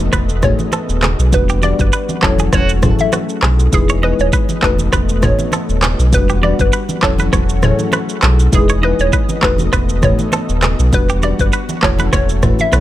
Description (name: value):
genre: afrobeats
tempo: 100 BPM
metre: 4/4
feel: swing 55% on 16ths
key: unclear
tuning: A4 = 440 Hz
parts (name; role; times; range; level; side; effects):
- FM electric piano with tremolo; accompaniment; 0.0-12.8 s; F#3 to D5; -22 LUFS; left 6 dB; none
- lush unison pad; sustained chords; 0.0-12.8 s; E3 to D#5; -25 LUFS; equal; chorus
- sub bass with octave; bass; 0.0-12.8 s; D#1 to B1; -15 LUFS; equal; none
- twangy electric guitar; riff; 0.1-12.8 s; F#4 to D#5; -22 LUFS; right 5 dB; tape echo
- afro-pop drum kit; drums; 0.1-12.8 s; handclaps, kick drum, rim click, shaker, toms; -16 LUFS; equal; none
- congas; percussion; 0.1-12.8 s; none; -25 LUFS; right 2 dB; none
- hollow square pluck; melody; 0.4-12.7 s; G#4 to E5; -20 LUFS; equal; chorus, tape echo
room: little or no reverb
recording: none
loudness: -12 LUFS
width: side -14 dB against mid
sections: 0.0-12.8 A section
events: none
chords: 0.0 B7/E; 1.3 Gmaj7/E; 2.2 A6/E; 3.7 Emaj7; 4.6 B7/E; 6.1 Gmaj7/E; 7.0 A6/E; 8.5 Emaj7; 9.4 B7/E; 10.9 Gmaj7/E; 11.8 A6/E